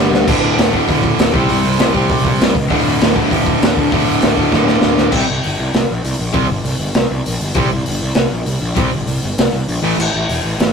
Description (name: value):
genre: punk rock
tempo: 198 BPM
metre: 4/4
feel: straight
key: unclear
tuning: A4 = 440 Hz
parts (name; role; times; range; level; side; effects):
- distorted electric guitar; riff; 0.0-10.0 s; D2 to C4; -18 LUFS; right 5 dB; overdrive
- overdriven electric guitar; riff; 0.0-10.0 s; D2 to C4; -19 LUFS; left 5 dB; none
- fuzz picked electric bass; bass; 0.0-10.7 s; D1 to D2; -19 LUFS; equal; overdrive
- raw garage drum kit; drums; 0.1-10.7 s; crash cymbal, hi-hat, kick drum, snare drum; -16 LUFS; equal; none
room: light reverb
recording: rough rehearsal-room recording, tube saturation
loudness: -13 LUFS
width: side -6 dB against mid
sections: 0.0-5.1 A section; 5.1-10.7 B section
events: drum fill 0.0, 4.5-5.1; half time 5.1-10.7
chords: 0.3 D5; 1.3 C5; 2.7 D5; 5.1 C5; 9.8 A5